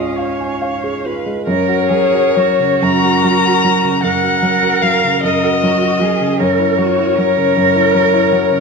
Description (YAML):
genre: classical, slow romantic movement for piano quartet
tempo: 42-53 BPM (dotted quarters)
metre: 12/8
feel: rubato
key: F# major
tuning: A4 = 441 Hz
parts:
  - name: dark violin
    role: melody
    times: 0.0-8.6 s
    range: C#5 to A#5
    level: -16 LUFS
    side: left 7 dB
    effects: none
  - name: rich cello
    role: second line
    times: 0.0-8.6 s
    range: C#4 to A#4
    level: -19 LUFS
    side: right 7 dB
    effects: none
  - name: dark baby grand piano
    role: accompaniment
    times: 0.0-8.6 s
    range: C#2 to G#5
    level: -17 LUFS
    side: right 1 dB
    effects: none
  - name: rich viola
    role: accompaniment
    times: 0.0-8.6 s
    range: A#4 to D#5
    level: -23 LUFS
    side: right 8 dB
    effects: none
room: moderate recital hall reverb, RT60 1.5 s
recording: minimal, uncompressed stereo recording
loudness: -12 LUFS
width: side -4 dB against mid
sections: 0.0-1.5 A section; 1.5-8.6 B section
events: none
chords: 0.0 C#; 1.5 F#; 6.4 F#7